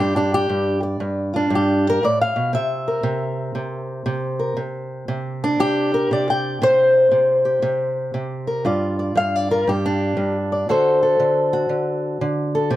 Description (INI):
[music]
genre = acoustic country blues, solo or duo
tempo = 118 BPM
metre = 4/4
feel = swing 65% on 8ths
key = unclear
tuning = A4 = 440 Hz
[part]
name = fingerpicked old ladder-braced acoustic guitar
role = solo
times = 0.0-12.8 s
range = G2 to G5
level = -18 LUFS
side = equal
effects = none
[sound]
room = light reverb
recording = none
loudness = -18 LUFS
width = side -14 dB against mid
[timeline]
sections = 0.0-12.8 A section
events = none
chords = 0.0 G7(no3); 2.5 C7; 8.7 G5; 10.7 D7